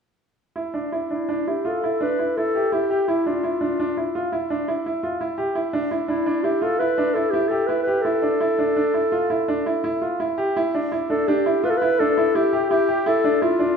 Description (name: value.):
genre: contemporary instrumental, chamber music in an uneven meter.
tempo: 168 BPM.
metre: 7/4.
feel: straight.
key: unclear.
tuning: A4 = 441 Hz.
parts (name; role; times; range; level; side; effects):
clear baby grand piano; arpeggios; 0.6-13.8 s; D4 to G4; -22 LUFS; right 2 dB; none.
mellow clarinet; melody; 1.1-13.8 s; E4 to B4; -21 LUFS; left 1 dB; none.
room: wet recital hall reverb, RT60 1.3 s.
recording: minimal, uncompressed stereo recording.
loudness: -19 LUFS.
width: side -6 dB against mid.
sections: 0.6-10.6 A section; 10.6-13.8 B section.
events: none.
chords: 0.6 Dsus2.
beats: | 0.55 0.92 1.28 1.64 2.00 2.36 2.71 | 3.07 3.43 3.78 4.14 4.50 4.85 5.20 | 5.55 5.91 6.26 6.62 6.97 7.33 7.68 | 8.04 8.39 8.75 9.11 9.47 9.83 10.20 | 10.56 10.92 11.28 11.63 11.99 12.35 12.70 | 13.06 13.42.